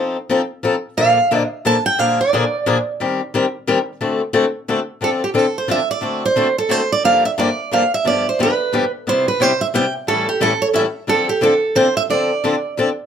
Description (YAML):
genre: jazz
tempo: 178 BPM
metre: 3/4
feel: swing 60% on 8ths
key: D minor from 5.0 s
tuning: A4 = 440 Hz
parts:
  - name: picked swing-style acoustic guitar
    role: accompaniment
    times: 0.0-12.9 s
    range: G2 to Bb4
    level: -18 LUFS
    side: left 4 dB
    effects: none
  - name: picked steel-string acoustic guitar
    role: melody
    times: 1.0-2.8, 5.0-12.7 s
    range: G4 to A5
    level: -17 LUFS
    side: right 4 dB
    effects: plate reverb
room: moderate club reverb, RT60 0.5 s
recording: close, detailed microphones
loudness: -15 LUFS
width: side -8 dB against mid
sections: 0.0-5.0 A section; 5.0-13.1 B section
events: none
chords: 0.0 F7; 1.0 Bbmaj7; 2.0 Bb7; 3.0 Eb6; 4.0 D7; 5.0 Dm7; 6.0 D7; 7.0 Gm7; 8.0 G7; 9.1 Cmaj7; 10.1 A7; 11.1 Dm7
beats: 0.29 0.63 | 0.97 1.30 1.64 | 1.98 2.31 2.65 | 2.99 3.32 3.66 | 4.00 4.33 4.67 | 5.01 5.34 5.68 | 6.02 6.36 6.69 | 7.03 7.37 7.71 | 8.04 8.38 8.72 | 9.06 9.39 9.73 | 10.07 10.41 10.74 | 11.08 11.42 11.76 | 12.09 12.43 12.77